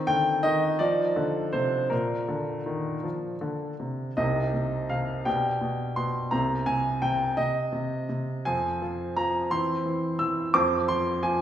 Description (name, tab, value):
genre	classical-period piano sonatina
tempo	53-59 BPM (dotted quarters)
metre	6/8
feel	rubato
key	Bb major, C minor from 4.2 s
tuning	A4 = 440 Hz
part	clear baby grand piano	solo	0.0-11.4 s	C2 to E6	-24 LUFS	equal	none
room	wet recital hall reverb, RT60 1.8 s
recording	heard from further back in the room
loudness	-24 LUFS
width	side -10 dB against mid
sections	0.0-4.2 A section; 4.2-11.4 B section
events	none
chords	0.0 Cm; 0.8 F5; 1.9 Bb; 4.2 Cm; 5.3 G/B; 6.3 N.C.; 8.5 Fm; 9.5 C/E; 10.5 F5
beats	0.80 | 1.92 3.05 | 4.18 5.26 | 6.33 7.37 | 8.47 9.51 | 10.54